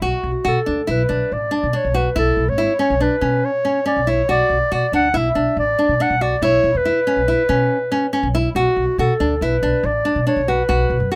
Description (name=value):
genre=contemporary instrumental, chamber music in an uneven meter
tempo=141 BPM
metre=5/4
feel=straight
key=B minor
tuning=A4 = 440 Hz
part: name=mellow clarinet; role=melody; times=0.0-11.2 s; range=F#4 to F#5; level=-21 LUFS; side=equal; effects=none
part: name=nylon-string guitar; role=arpeggios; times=0.0-11.2 s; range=C#4 to F#4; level=-23 LUFS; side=equal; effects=none
part: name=upright bass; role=bass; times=0.0-11.2 s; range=G#1 to B2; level=-25 LUFS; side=equal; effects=none
room=light reverb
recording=close, detailed microphones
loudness=-18 LUFS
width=mono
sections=0.0-11.2 A section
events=none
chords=0.0 Bm; 2.2 C#m7; 4.3 Bm; 6.4 Bsus24; 8.6 Bm7